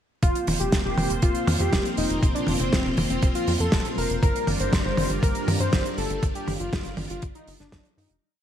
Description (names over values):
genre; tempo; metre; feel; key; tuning
italo disco; 120 BPM; 4/4; straight; G minor; A4 = 440 Hz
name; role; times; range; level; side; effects
wide unison lead; melody; 0.2-8.2 s; C4 to C5; -28 LUFS; left 1 dB; ping-pong delay
string machine, full ensemble; sustained chords; 0.2-8.2 s; G3 to C5; -30 LUFS; equal; ensemble chorus
tight sequencer bass; bass; 0.2-8.2 s; F1 to G2; -28 LUFS; equal; tube saturation
damped 70s drum kit; drums; 0.2-8.2 s; hi-hat, snare drum, toms; -27 LUFS; right 1 dB; studio reverb, gated reverb
electronic kick drum; drums; 0.2-7.8 s; none; -24 LUFS; equal; studio reverb
room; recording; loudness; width
light reverb, small room ambience; bright 1980s-style digital production, vinyl crackle; -21 LUFS; side -10 dB against mid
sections
0.2-8.2 chorus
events
fade-out 5.6-8.2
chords
0.2 Fsus4; 4.2 Gm7